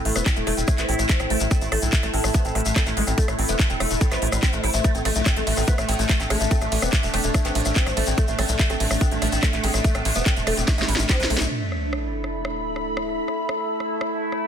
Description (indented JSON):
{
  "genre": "psychedelic trance",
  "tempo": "144 BPM",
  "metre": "4/4",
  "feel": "straight",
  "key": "A minor",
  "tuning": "A4 = 438 Hz",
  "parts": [
    { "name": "overtone-sweeping drone", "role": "sustained chords", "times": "0.0-14.5 s", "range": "A3 to E4", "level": "-29 LUFS", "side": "right 1 dB", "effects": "chorus, built-in reverb, sidechain pumping" },
    { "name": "oud", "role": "melody", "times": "0.1-11.5 s", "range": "A2 to E4", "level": "-28 LUFS", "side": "equal", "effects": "phaser, sidechain pumping, dub echo" },
    { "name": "woody wave-folded pluck", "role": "riff", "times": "0.1-11.5 s", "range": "G#3 to B4", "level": "-29 LUFS", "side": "moving between left 3 dB and right 3 dB", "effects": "chorus, auto-pan, sidechain pumping, digital delay" },
    { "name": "tight sequencer bass", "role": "bass", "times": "0.1-11.5 s", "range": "E1 to B1", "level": "-26 LUFS", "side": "equal", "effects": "none" },
    { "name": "drum and bass drum kit", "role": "drums", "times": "0.1-14.4 s", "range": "handclaps, hi-hat, ride cymbal, rim click, snare drum", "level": "-27 LUFS", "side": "equal", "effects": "none" },
    { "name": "tube shaker", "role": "percussion", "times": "0.2-11.5 s", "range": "none", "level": "-32 LUFS", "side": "left 5 dB", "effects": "none" },
    { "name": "electronic kick drum", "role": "drums", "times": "0.3-11.2 s", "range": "none", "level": "-20 LUFS", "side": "equal", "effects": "none" },
    { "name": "sub drop", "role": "sound effects", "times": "11.5-13.2 s", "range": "none", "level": "-31 LUFS", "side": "equal", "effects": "none" },
    { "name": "ethereal airy pad", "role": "texture", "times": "11.9-14.5 s", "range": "A4 to B5", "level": "-29 LUFS", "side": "left 1 dB", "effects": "ensemble chorus, built-in reverb, sidechain pumping" }
  ],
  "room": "light reverb",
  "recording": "dense, heavily limited modern master",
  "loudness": "-20 LUFS",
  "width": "side -8 dB against mid",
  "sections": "0.0-11.5 A section; 11.5-14.5 B section",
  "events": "drop 0.0-11.5; drum fill 10.7-11.5; impact 11.5-13.2",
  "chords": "0.0 A5",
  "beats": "0.26 0.68 1.09 | 1.51 1.93 2.34 2.76 | 3.18 3.59 4.01 4.43 | 4.84 5.26 5.68 6.09 | 6.51 6.93 7.34 7.76 | 8.18 8.59 9.01 9.43 | 9.84 10.26 10.68 11.09 | 11.51 11.93 12.34 12.76 | 13.18 13.59 14.01 14.43"
}